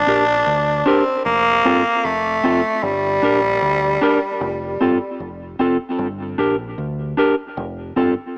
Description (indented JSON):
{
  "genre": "dub reggae",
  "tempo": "76 BPM",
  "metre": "4/4",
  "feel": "straight",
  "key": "G minor",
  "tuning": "A4 = 441 Hz",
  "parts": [
    { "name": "growling tenor saxophone", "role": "melody", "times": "0.0-4.9 s", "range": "G3 to D4", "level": "-20 LUFS", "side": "equal", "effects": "tape echo" },
    { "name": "deep dub fingered electric bass", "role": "bass", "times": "0.0-8.1 s", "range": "F1 to D2", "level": "-30 LUFS", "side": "equal", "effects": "none" },
    { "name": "mellow electric guitar", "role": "accompaniment", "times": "0.1-8.1 s", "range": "C4 to Bb4", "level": "-22 LUFS", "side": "equal", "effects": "tape echo" }
  ],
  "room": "moderate echo chamber reverb, RT60 1.4 s, small room reverb",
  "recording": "small speaker sound, faint mains hum",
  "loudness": "-18 LUFS",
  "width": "mono",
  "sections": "0.0-8.4 A section",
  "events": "break 2.8-8.4",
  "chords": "0.0 Gm; 1.2 F; 2.8 Gm; 4.4 F; 6.0 Gm; 7.6 F"
}